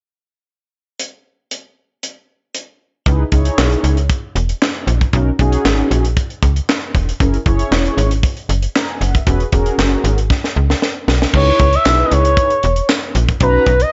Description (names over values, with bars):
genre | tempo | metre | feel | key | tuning
early-eighties boogie funk | 116 BPM | 4/4 | straight | C# dorian | A4 = 440 Hz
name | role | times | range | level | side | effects
tight funk drum kit | drums | 1.0-13.9 s | crash cymbal, handclaps, hi-hat, kick drum, snare drum | -20 LUFS | equal | gated reverb
mellow synth brass | accompaniment | 3.1-13.7 s | C#4 to A#5 | -22 LUFS | equal | chorus, plate reverb
slap-like FM bass | bass | 3.1-13.8 s | E1 to C#2 | -18 LUFS | equal | none
expressive portamento lead | melody | 11.4-13.9 s | B4 to E5 | -16 LUFS | equal | chorus, plate reverb
tambourine | percussion | 11.9-13.0 s | none | -30 LUFS | equal | none
room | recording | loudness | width
light reverb | nothing above 7.8 kHz | -15 LUFS | mono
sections
1.0-3.1 A section; 3.1-11.3 B section; 11.3-13.9 C section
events
drum fill 10.3-11.3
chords
1.0 N.C.; 3.1 C#m7; 5.1 Bmaj7; 7.2 F#7; 9.3 E6; 11.3 C#m7; 13.4 Bmaj7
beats
| 0.99 1.51 2.03 2.55 | 3.06 3.58 4.10 4.62 | 5.13 5.65 6.17 6.68 | 7.20 7.72 8.24 8.75 | 9.27 9.79 10.31 10.82 | 11.34 11.86 12.38 12.89 | 13.41